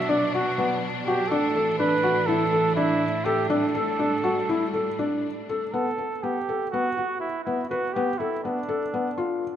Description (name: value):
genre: contemporary instrumental, chamber music in an uneven meter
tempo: 246 BPM (eighths)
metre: 9/8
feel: straight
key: unclear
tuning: A4 = 440 Hz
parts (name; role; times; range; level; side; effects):
- warm flugelhorn; melody; 0.0-9.6 s; D4 to E5; -27 LUFS; right 3 dB; none
- bright studio string section; sustained chords; 0.0-5.7 s; A2 to D4; -30 LUFS; right 1 dB; none
- felt-muted upright piano; arpeggios; 0.1-9.4 s; B3 to B4; -25 LUFS; left 2 dB; none
room: wet concert hall reverb, RT60 2.5 s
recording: none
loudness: -22 LUFS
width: side -10 dB against mid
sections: 0.0-5.7 A section; 5.7-9.6 B section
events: none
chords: 0.0 Bm; 1.3 Asus4; 3.5 A7sus4; 5.7 Asus2; 6.7 Bsus4; 8.0 Bm7; 8.9 Dm6